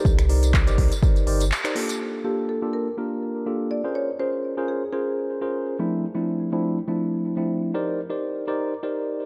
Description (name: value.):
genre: deep house.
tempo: 123 BPM.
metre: 4/4.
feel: swing 55% on 16ths.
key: G minor.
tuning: A4 = 440 Hz.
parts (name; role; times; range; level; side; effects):
marimba with medium mallets; melody; 0.0-5.4 s; G4 to D5; -34 LUFS; equal; dub echo.
tine electric piano; stabs; 0.0-9.3 s; F3 to D5; -28 LUFS; equal; sidechain pumping, low-pass filter, delay.
warm sub bass; bass; 0.1-1.5 s; G1 to C2; -23 LUFS; equal; sidechain pumping.
deep house drum kit; drums; 0.1-2.0 s; finger snaps, handclaps, hi-hat, tambourine; -32 LUFS; equal; none.
electronic kick drum; drums; 0.1-1.1 s; none; -22 LUFS; equal; none.
room: light reverb.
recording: dark, warm production.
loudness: -24 LUFS.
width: mono.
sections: 0.0-2.0 A section; 2.0-9.3 B section.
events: break 1.5-2.0; band accent 1.5; filter sweep on tine electric piano 2.0-9.3.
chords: 0.1 Cm9; 2.0 Gm9; 4.0 Bbm9; 5.9 Dm9; 7.9 Cm9.